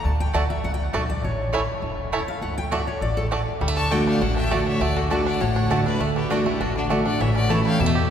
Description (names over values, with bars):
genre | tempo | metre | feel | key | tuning
bluegrass | 201 BPM | 4/4 | straight | D major | A4 = 440 Hz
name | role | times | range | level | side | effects
picked steel-string acoustic guitar | accompaniment | 0.0-8.1 s | A2 to A5 | -24 LUFS | equal | none
upright bass | bass | 0.0-8.1 s | E1 to E2 | -26 LUFS | equal | none
bluegrass banjo | melody | 0.3-8.1 s | E3 to G4 | -30 LUFS | right 3 dB | none
mandolin | stabs | 0.3-7.6 s | A3 to A5 | -29 LUFS | right 2 dB | none
bright fiddle | melody | 3.8-8.1 s | D4 to A5 | -29 LUFS | left 2 dB | none
clear fiddle | second line | 3.8-8.1 s | F#4 to D6 | -31 LUFS | left 4 dB | none
room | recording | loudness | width
wet cathedral reverb, RT60 6.5 s | recorded in a church or concert hall | -20 LUFS | side -8 dB against mid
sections
0.0-3.6 A section; 3.6-8.1 B section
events
steel-string acoustic guitar solo 0.0-3.6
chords
0.0 D; 1.2 A; 2.4 D; 7.2 A